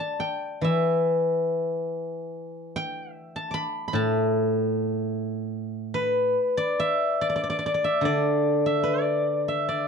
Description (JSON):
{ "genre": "chinese traditional, Chinese solo plucked strings", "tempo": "67-78 BPM", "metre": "4/4", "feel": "rubato", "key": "D zhi mode", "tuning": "A4 = 440 Hz", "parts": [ { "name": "steel-string zither", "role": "solo", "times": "0.0-9.9 s", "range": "A2 to D6", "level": "-23 LUFS", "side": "left 1 dB", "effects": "none" } ], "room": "light reverb", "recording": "dark, warm production", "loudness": "-23 LUFS", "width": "side -6 dB against mid", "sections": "0.0-9.9 A section", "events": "none", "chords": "none" }